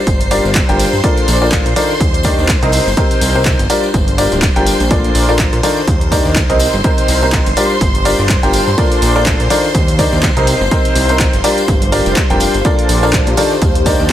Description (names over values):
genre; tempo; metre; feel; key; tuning
piano house; 124 BPM; 4/4; swing 57% on 16ths; unclear; A4 = 440 Hz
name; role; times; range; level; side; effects
string machine, violins; sustained chords; 0.0-14.1 s; C5 to C6; -20 LUFS; equal; ensemble chorus, sidechain pumping
ethereal airy pad; texture; 0.2-14.1 s; G4 to Bb5; -28 LUFS; equal; none
fat analog bass; bass; 0.1-14.1 s; D1 to Bb2; -17 LUFS; equal; sidechain pumping
electronic kick drum; drums; 0.1-14.1 s; none; -15 LUFS; equal; none
punchy analog drum machine; drums; 0.1-14.1 s; handclaps, hi-hat; -20 LUFS; right 1 dB; none
tambourine; percussion; 0.1-14.1 s; none; -27 LUFS; left 5 dB; none
bright upright piano; riff; 0.3-14.1 s; Bb2 to G5; -15 LUFS; left 1 dB; sidechain pumping, tape echo
room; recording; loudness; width
digital ambience; none; -10 LUFS; side -12 dB against mid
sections
0.0-14.1 A section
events
none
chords
0.0 Gm7; 1.0 Bbmaj7; 2.0 Ebmaj7; 2.7 Cm7; 3.7 Gm7; 4.9 Bbmaj7; 5.9 Ebmaj7; 6.6 Cm7; 7.6 Gm7; 8.8 Bbmaj7; 9.7 Ebmaj7; 10.5 Cm7; 11.4 Gm7; 12.7 Bbmaj7; 13.6 Ebmaj7